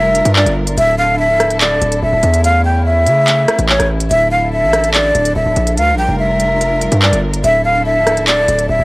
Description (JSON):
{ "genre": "hip hop, drill", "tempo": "144 BPM", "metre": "4/4", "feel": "half-time", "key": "D harmonic minor", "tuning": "A4 = 440 Hz", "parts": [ { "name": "breathy jazz flute", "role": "melody", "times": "0.0-8.8 s", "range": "C#5 to G5", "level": "-13 LUFS", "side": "equal", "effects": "cassette tape, tape echo" }, { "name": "rich studio string section", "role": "sustained chords", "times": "0.0-8.8 s", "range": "D3 to Bb4", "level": "-22 LUFS", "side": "equal", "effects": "none" }, { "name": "distorted 808-style bass", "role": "bass", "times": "0.0-8.8 s", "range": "C#1 to C#3", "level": "-16 LUFS", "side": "equal", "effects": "distortion" }, { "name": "drill drum kit", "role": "drums", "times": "0.1-8.7 s", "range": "handclaps, hi-hat, rim click", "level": "-16 LUFS", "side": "equal", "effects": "cassette tape" } ], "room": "little or no reverb", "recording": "home recording on cassette, faint mains hum", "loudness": "-10 LUFS", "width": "side -23 dB against mid", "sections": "0.0-8.8 A section", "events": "none", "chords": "0.0 Gm7; 0.8 Dsus2; 2.4 A; 4.1 Dsus2; 5.8 Gm7; 7.4 Dsus2", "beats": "0.36 | 0.78 1.19 1.61 2.02 | 2.44 2.86 3.27 3.69 | 4.11 4.53 4.94 5.36 | 5.78 6.19 6.61 7.03 | 7.44 7.86 8.28 8.69" }